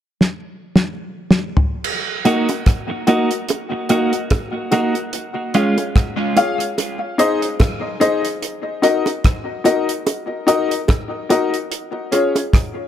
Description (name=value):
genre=dub reggae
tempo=73 BPM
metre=4/4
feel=swing 57% on 16ths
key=Eb dorian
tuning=A4 = 440 Hz
part: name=damped 70s drum kit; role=drums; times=0.2-12.8 s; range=crash cymbal, hi-hat, kick drum, rim click, snare drum, toms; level=-18 LUFS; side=equal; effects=none
part: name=bright upright piano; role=stabs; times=2.2-12.4 s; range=Db4 to Gb5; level=-19 LUFS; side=left 3 dB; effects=tape echo
part: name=clean electric guitar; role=accompaniment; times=2.3-5.8 s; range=Ab3 to Gb4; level=-20 LUFS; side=right 4 dB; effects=spring reverb, tape echo
part: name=bongos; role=percussion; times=2.3-12.5 s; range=none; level=-26 LUFS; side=right 3 dB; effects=tape echo
room=light reverb, small room ambience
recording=echo-heavy mix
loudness=-16 LUFS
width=side -10 dB against mid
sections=0.0-1.8 A section; 1.8-12.9 B section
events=drum fill 0.2-1.8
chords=0.0 N.C.; 1.8 Ebm; 5.1 Db; 6.8 Ab; 8.4 Ebm; 11.7 Db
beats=0.20 1.02 | 1.85 2.67 3.49 4.32 | 5.14 5.96 6.78 7.60 | 8.43 9.25 10.07 10.89 | 11.71 12.53